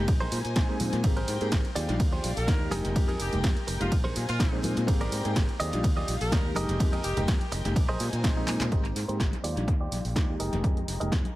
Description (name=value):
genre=filtered disco house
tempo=125 BPM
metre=4/4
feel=swing 54% on 16ths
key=Bb mixolydian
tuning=A4 = 443 Hz
part: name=bright reed electric piano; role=accompaniment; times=0.0-11.2 s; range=G3 to Ab4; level=-34 LUFS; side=equal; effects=phaser, sidechain pumping, low-pass filter, dub echo
part: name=dark chamber violin section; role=sustained chords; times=0.0-11.4 s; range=Ab3 to Bb5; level=-40 LUFS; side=left 3 dB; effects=vintage 12-bit sampler grit, sidechain pumping, low-pass filter
part: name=modern bright fingered electric bass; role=bass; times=0.0-11.2 s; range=F1 to Bb2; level=-31 LUFS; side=equal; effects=sidechain pumping, low-pass filter
part: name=electronic kick drum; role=drums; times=0.1-11.2 s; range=none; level=-26 LUFS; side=equal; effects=none
part: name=punchy analog drum machine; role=drums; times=0.1-11.3 s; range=handclaps, hi-hat, ride cymbal, snare drum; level=-35 LUFS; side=right 1 dB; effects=sidechain pumping on hats, sidechain pumping on cymbals, dub echo
part: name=maracas and congas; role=percussion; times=0.1-11.3 s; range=none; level=-39 LUFS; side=left 1 dB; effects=none
part: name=direct-recorded clean electric guitar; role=riff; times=0.2-11.3 s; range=Eb4 to Ab5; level=-36 LUFS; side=right 2 dB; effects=sidechain pumping, low-pass filter, dub echo
part: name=bright horn section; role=melody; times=2.4-7.2 s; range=F4 to Bb4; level=-39 LUFS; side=equal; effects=sidechain pumping, low-pass filter, dub echo
room=little or no reverb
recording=echo-heavy mix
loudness=-25 LUFS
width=side -16 dB against mid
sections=0.0-8.7 A section; 8.7-11.4 B section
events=drop 0.0-8.7; clean electric guitar fill 0.3-1.0; drum fill 8.5; filter sweep 8.7-11.4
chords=0.1 Bb9sus4; 1.0 Abmaj9; 1.8 Ebmaj9; 2.7 Fm11; 3.9 Bb9sus4; 4.9 Abmaj9; 5.6 Ebmaj9; 6.6 Fm11; 7.8 Bb9sus4; 8.7 Abmaj9; 9.4 Ebmaj9; 10.4 Fm11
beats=0.08 0.56 | 1.04 1.52 2.00 2.48 | 2.96 3.44 3.92 4.40 | 4.88 5.36 5.84 6.32 | 6.80 7.28 7.76 8.24 | 8.72 9.20 9.68 10.16 | 10.64 11.12